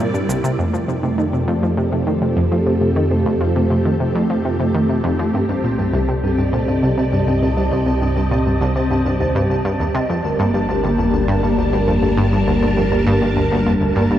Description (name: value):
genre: ambient, sequencer-driven space music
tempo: 101 BPM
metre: 4/4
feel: straight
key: unclear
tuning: A4 = 440 Hz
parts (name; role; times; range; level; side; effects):
- phased string machine; sustained chords; 0.0-14.2 s; C3 to A5; -22 LUFS; left 1 dB; ensemble chorus, phaser
- analog pluck; riff; 0.0-14.2 s; C2 to F3; -20 LUFS; equal; chorus, ping-pong delay
- cabasa; percussion; 0.0-0.6 s; none; -38 LUFS; right 1 dB; overdrive, ping-pong delay
- vibraphone with soft mallets; arpeggios; 0.6-14.2 s; A3 to Eb5; -21 LUFS; right 1 dB; auto-pan, ping-pong delay
- fat analog bass; bass; 0.6-14.2 s; G1 to F2; -23 LUFS; equal; none
- pulsing gated texture; texture; 0.6-14.2 s; A5; -32 LUFS; right 1 dB; chorus, built-in reverb
room: wet huge ambient reverb, RT60 8.8 s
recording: worn, warbling old tape, cassette tape, warbly pitch drift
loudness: -15 LUFS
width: side -11 dB against mid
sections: 0.6-14.2 A section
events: fade-in on synth texture 0.6-14.2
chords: 0.0 C; 0.6 F7; 5.3 Cm; 10.1 Gm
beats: | 0.59 1.18 1.78 2.37 | 2.96 3.56 4.15 4.75 | 5.34 5.93 6.53 7.12 | 7.72 8.31 8.91 9.50 | 10.09 10.69 11.28 11.88 | 12.47 13.06 13.66